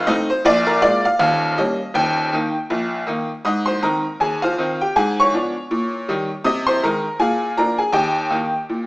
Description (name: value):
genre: jazz, stride piano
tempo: 160 BPM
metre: 4/4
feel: swing 60% on 8ths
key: Ab major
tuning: A4 = 440 Hz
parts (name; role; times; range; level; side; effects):
- tack piano; solo; 0.0-8.9 s; Eb1 to Eb6; -17 LUFS; equal; none
room: wet stone room reverb, RT60 1.3 s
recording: band playing live in one room, small speaker sound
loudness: -17 LUFS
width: side -21 dB against mid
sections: 0.0-3.4 A section; 3.4-8.9 B section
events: none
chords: 0.4 Bb5; 1.2 Eb7; 1.9 Eb; 3.4 Ab; 4.9 Abdim7; 5.7 Eb7/Bb; 6.4 Ab/C; 7.2 Bb7; 7.9 Eb